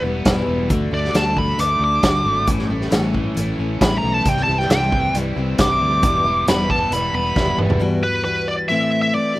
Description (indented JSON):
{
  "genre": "folk rock and heartland rock",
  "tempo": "135 BPM",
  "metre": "4/4",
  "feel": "straight",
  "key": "E minor",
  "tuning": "A4 = 440 Hz",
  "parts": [
    { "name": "picked steel-string acoustic guitar", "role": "accompaniment", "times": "0.0-9.4 s", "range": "E2 to G4", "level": "-23 LUFS", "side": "left 2 dB", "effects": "none" },
    { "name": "overdriven electric guitar", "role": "riff", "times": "0.0-7.8 s", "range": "E2 to F#4", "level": "-28 LUFS", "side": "right 1 dB", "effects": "slapback echo" },
    { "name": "fingered electric bass", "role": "bass", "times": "0.0-7.8 s", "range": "E1 to D2", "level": "-24 LUFS", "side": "equal", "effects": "none" },
    { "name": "vintage drum kit", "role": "drums", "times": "0.3-7.8 s", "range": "hi-hat, kick drum, snare drum, toms", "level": "-20 LUFS", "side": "equal", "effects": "none" },
    { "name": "bluesy overdriven lead guitar", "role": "melody", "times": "0.9-9.4 s", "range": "B4 to D6", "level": "-20 LUFS", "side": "equal", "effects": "distortion, slapback echo" }
  ],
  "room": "little or no reverb",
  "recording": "none",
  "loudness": "-16 LUFS",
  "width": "side -17 dB against mid",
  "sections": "0.0-7.8 A section; 7.8-9.4 B section",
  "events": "lead electric guitar solo 0.0-7.8; drum fill 7.4-7.8",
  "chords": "0.0 Em; 0.7 D; 2.5 A; 4.3 C; 6.0 Em; 7.8 Emadd9; 8.7 Am"
}